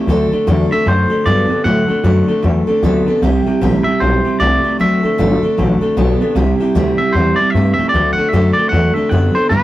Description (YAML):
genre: rockabilly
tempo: 153 BPM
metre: 4/4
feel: swing 61% on 8ths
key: unclear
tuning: A4 = 440 Hz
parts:
  - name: picked steel-string acoustic guitar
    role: accompaniment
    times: 0.0-9.6 s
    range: G2 to A4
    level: -17 LUFS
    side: left 1 dB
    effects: none
  - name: electric guitar through a small old amp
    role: riff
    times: 0.0-9.6 s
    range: G2 to B3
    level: -19 LUFS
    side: right 2 dB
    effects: none
  - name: upright bass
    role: bass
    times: 0.1-9.6 s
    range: G1 to A2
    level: -16 LUFS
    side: equal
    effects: none
  - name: twangy electric guitar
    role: melody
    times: 0.7-9.6 s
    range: B4 to F#5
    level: -17 LUFS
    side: equal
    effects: none
room: moderate small room reverb, RT60 0.5 s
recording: rough rehearsal-room recording, warm saturation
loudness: -12 LUFS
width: side -15 dB against mid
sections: 0.0-9.5 A section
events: none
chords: 0.1 D7; 3.2 C; 4.8 D7; 6.4 C; 7.9 D7